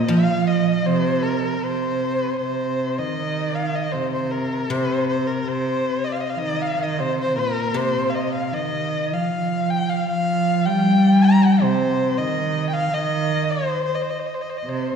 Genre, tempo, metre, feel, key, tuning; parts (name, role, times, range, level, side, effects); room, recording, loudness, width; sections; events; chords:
chinese traditional, Chinese chamber ensemble; 79 BPM; 2/4; rubato; C yu mode; A4 = 439 Hz
warm erhu; melody; 0.0-15.0 s; Bb4 to Bb5; -23 LUFS; left 1 dB
dark cello; second line; 0.0-15.0 s; Bb2 to G3; -21 LUFS; right 2 dB
guzheng; accompaniment; 0.1-2.4, 4.7-10.1 s; C3 to F3; -28 LUFS; left 2 dB
wet concert hall reverb, RT60 2.1 s; heard from further back in the room; -19 LUFS; side -7 dB against mid
0.0-3.2 A section; 3.2-15.0 B section